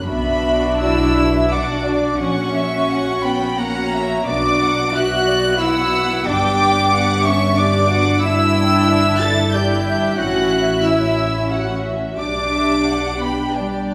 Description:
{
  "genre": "classical, slow romantic movement for string orchestra",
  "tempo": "77-93 BPM",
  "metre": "3/4",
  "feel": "rubato",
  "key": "B minor",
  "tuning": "A4 = 440 Hz",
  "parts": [
    { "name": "warm studio violin section", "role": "melody", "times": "0.0-13.9 s", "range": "G5 to A6", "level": "-23 LUFS", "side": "equal", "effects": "none" },
    { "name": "warm studio viola section", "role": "accompaniment", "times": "0.0-13.9 s", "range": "B3 to G4", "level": "-25 LUFS", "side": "equal", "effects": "none" },
    { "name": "dark studio violin section", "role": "second line", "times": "0.1-13.9 s", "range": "D5 to G5", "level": "-25 LUFS", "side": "equal", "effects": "none" },
    { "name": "dark studio double bass section", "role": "bass", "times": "0.1-13.9 s", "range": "G1 to B1", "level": "-25 LUFS", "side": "equal", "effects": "none" },
    { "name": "warm studio cello section", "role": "bass", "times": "0.1-13.9 s", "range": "G3 to A4", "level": "-24 LUFS", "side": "equal", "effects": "none" }
  ],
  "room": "wet recital hall reverb, RT60 1.5 s",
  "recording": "recorded in a church or concert hall",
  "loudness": "-17 LUFS",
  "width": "mono",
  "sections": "0.1-13.9 A section",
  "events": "none",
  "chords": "0.1 Bm; 2.2 F#/A#; 4.3 Bm; 6.3 G; 8.2 Em7/G; 10.2 A; 12.2 G/B"
}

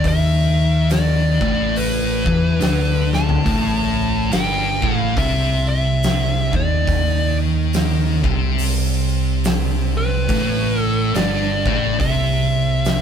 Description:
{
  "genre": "stoner and doom metal",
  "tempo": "70 BPM",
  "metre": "4/4",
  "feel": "swing 60% on 8ths",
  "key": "unclear",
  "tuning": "A4 = 442 Hz",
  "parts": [
    { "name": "fuzz lead guitar", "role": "melody", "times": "0.0-13.0 s", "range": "B4 to A5", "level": "-23 LUFS", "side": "left 1 dB", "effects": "distortion" },
    { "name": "thick fuzz guitar", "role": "riff", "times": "0.0-13.0 s", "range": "G2 to E3", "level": "-23 LUFS", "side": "left 8 dB", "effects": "distortion" },
    { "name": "thick fuzz guitar", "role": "riff", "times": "0.0-13.0 s", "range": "G2 to E3", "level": "-22 LUFS", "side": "right 7 dB", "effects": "distortion" },
    { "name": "overdriven picked electric bass", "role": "bass", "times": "0.0-13.0 s", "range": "G1 to E2", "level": "-22 LUFS", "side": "equal", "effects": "none" },
    { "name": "oversized low-tuned drum kit", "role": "drums", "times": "0.0-13.0 s", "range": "hi-hat, kick drum, snare drum, toms", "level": "-23 LUFS", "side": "equal", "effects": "none" }
  ],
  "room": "light reverb",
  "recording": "band playing live in one room",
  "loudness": "-16 LUFS",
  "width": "side -8 dB against mid",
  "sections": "0.0-13.0 A section",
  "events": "drum fill 3.0-3.5",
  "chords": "0.0 A5"
}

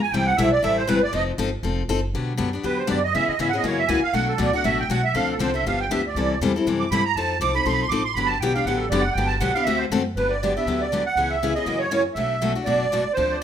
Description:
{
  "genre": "acoustic string swing (jazz manouche)",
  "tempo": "239 BPM",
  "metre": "4/4",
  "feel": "swing 57% on 8ths",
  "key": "G major",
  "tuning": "A4 = 441 Hz",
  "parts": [
    { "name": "musette accordion", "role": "melody", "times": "0.0-1.2, 10.2-13.4 s", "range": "B4 to G#5", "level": "-22 LUFS", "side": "right 3 dB", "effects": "plate reverb" },
    { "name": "upright bass", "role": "bass", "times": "0.0-13.4 s", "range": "F1 to C#3", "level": "-29 LUFS", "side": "equal", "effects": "none" },
    { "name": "picked steel-string acoustic guitar", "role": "accompaniment", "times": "0.1-13.4 s", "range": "B2 to A4", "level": "-24 LUFS", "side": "left 4 dB", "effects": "plate reverb" },
    { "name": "musette accordion", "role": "second line", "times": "2.6-9.8, 13.3-13.4 s", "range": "A4 to D6", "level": "-23 LUFS", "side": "right 6 dB", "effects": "plate reverb" }
  ],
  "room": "wet studio reverb, RT60 0.6 s",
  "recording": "rough home demo mix",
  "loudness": "-20 LUFS",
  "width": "side -9 dB against mid",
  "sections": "0.0-2.1 A section; 2.1-10.2 A section; 10.2-13.4 B section",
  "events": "accordion solo 0.0-2.1, 2.1-10.2",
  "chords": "0.1 C6; 1.1 F9; 2.1 Gmaj7; 3.1 C#m7; 3.6 F#7; 4.1 Bm7; 5.1 Dm7; 5.6 G7; 6.1 C6; 7.2 F7; 8.2 Gmaj9; 9.7 D7; 10.2 Gmaj7; 11.2 C#m7; 11.7 F#7; 12.2 Bm7"
}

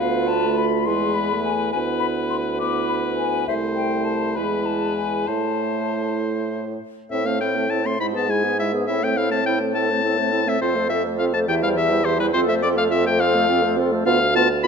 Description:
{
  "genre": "quick classical-period movement for wind quintet",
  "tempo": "69 BPM (dotted quarters)",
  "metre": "6/8",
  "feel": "rubato",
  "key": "A minor",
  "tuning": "A4 = 440 Hz",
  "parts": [
    { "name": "hollow concert flute", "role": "melody", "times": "0.0-14.7 s", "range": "G#4 to D6", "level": "-27 LUFS", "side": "left 9 dB", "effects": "none" },
    { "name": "bright oboe", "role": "second line", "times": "0.0-14.7 s", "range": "B4 to C6", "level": "-24 LUFS", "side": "left 4 dB", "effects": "none" },
    { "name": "dark clarinet", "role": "accompaniment", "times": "0.0-14.7 s", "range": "C4 to A4", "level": "-26 LUFS", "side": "right 9 dB", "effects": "none" },
    { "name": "warm French horn", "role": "accompaniment", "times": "0.0-14.7 s", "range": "E3 to C4", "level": "-27 LUFS", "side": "left 2 dB", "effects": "none" },
    { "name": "warm bassoon", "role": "bass", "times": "0.0-14.7 s", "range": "C2 to A2", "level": "-24 LUFS", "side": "right 3 dB", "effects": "none" }
  ],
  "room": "moderate scoring stage reverb, RT60 1.9 s",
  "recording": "none",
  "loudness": "-19 LUFS",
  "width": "side -6 dB against mid",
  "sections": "0.0-7.1 A section; 7.1-14.7 B section",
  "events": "none",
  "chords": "0.0 Bdim/D; 0.9 E; 1.7 E5/D; 3.5 Am/C; 4.4 E; 5.3 Am; 8.0 E/G#; 8.9 Am; 10.6 F; 11.5 C/E; 12.3 F; 14.1 Bdim/D"
}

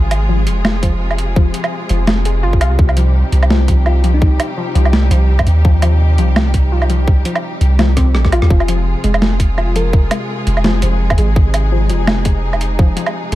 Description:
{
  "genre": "half-time drum and bass",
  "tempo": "168 BPM",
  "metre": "4/4",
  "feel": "swing 56% on 16ths, half-time",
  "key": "F minor",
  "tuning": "A4 = 440 Hz",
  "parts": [
    { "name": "clear studio string section", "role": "sustained chords", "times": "0.0-13.3 s", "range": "C3 to Ab4", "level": "-23 LUFS", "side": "equal", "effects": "sidechain pumping" },
    { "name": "long sustained 808-style bass", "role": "bass", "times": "0.0-13.3 s", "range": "F1 to Eb2", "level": "-13 LUFS", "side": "equal", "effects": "none" },
    { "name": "boom bap sampler-style drum kit", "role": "drums", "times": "0.1-13.3 s", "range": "hi-hat, rim click, snare drum, woodblock", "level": "-18 LUFS", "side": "right 1 dB", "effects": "overdrive" },
    { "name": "warbly dusty pluck", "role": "arpeggios", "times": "0.3-13.3 s", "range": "F3 to F4", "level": "-22 LUFS", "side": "left 4 dB", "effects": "chorus, digital delay" },
    { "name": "electronic kick drum", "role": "drums", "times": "0.8-12.9 s", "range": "none", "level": "-13 LUFS", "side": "equal", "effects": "none" },
    { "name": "bell-like FM electric piano", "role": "melody", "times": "3.9-4.5, 9.6-10.1 s", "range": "Eb4 to Bb4", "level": "-25 LUFS", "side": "left 2 dB", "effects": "chorus, cassette tape, ping-pong delay" }
  ],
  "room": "digital ambience",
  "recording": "none",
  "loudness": "-11 LUFS",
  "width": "side -16 dB against mid",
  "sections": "0.0-13.3 A section",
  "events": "drum fill 8.0-8.5",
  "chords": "0.0 Fm; 2.8 Cm; 8.5 Fm"
}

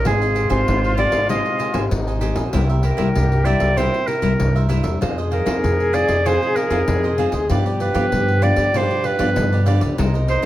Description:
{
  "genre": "samba and choro",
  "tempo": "97 BPM",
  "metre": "4/4",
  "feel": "straight",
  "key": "unclear",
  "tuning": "A4 = 440 Hz",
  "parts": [
    { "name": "clear clarinet", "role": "melody", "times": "0.0-10.5 s", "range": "Ab4 to Eb5", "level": "-21 LUFS", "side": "right 2 dB", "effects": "none" },
    { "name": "cavaquinho", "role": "accompaniment", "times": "0.0-10.5 s", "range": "Eb4 to Ab5", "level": "-28 LUFS", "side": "right 6 dB", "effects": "none" },
    { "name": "nylon-string guitar", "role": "accompaniment", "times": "0.0-10.5 s", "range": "G2 to Ab4", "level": "-25 LUFS", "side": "left 3 dB", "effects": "none" },
    { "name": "upright bass", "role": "bass", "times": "0.0-10.4 s", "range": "Ab1 to G2", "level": "-20 LUFS", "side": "equal", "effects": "none" },
    { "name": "bright trombone", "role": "second line", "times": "0.1-10.5 s", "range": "Eb4 to Ab4", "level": "-25 LUFS", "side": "left 2 dB", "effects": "none" },
    { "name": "pandeiro", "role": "percussion", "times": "0.1-10.5 s", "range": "none", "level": "-26 LUFS", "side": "left 2 dB", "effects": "none" }
  ],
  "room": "light reverb",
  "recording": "close, detailed microphones",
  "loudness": "-16 LUFS",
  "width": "side -14 dB against mid",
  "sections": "0.0-10.5 A section",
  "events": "none",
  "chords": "0.1 Abmaj7; 2.5 C7; 5.0 Fm7; 7.5 G7"
}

